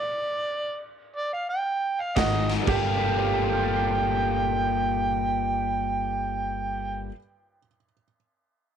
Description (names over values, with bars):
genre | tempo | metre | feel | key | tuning
electric blues shuffle | 118 BPM | 4/4 | swing 65% on 8ths | G minor | A4 = 442 Hz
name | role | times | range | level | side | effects
overdriven harmonica | melody | 0.0-7.1 s | D5 to G5 | -27 LUFS | right 3 dB | none
bright upright piano | second line | 2.2-7.1 s | Gb4 to G4 | -33 LUFS | right 10 dB | none
tack piano | accompaniment | 2.2-8.2 s | G2 to C7 | -36 LUFS | right 12 dB | none
overdriven electric guitar | riff | 2.2-7.2 s | Ab2 to A4 | -29 LUFS | left 14 dB | none
upright bass | bass | 2.2-7.1 s | G1 to Ab1 | -31 LUFS | right 1 dB | none
raw garage drum kit | drums | 2.2-2.8 s | crash cymbal, kick drum, ride cymbal, snare drum | -32 LUFS | right 1 dB | none
room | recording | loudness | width
moderate spring reverb, RT60 1.2 s, small room ambience | 1960s-style stereo with parts hard left and right | -24 LUFS | side -8 dB against mid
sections
0.0-2.7 A section; 2.7-6.7 B section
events
stop 0.0-2.2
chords
0.0 G5; 2.2 Ab7; 2.7 Gm9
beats
0.13 | 0.64 1.15 1.66 2.17 | 2.67 3.18 3.69 4.20 | 4.71 5.21 5.72 6.23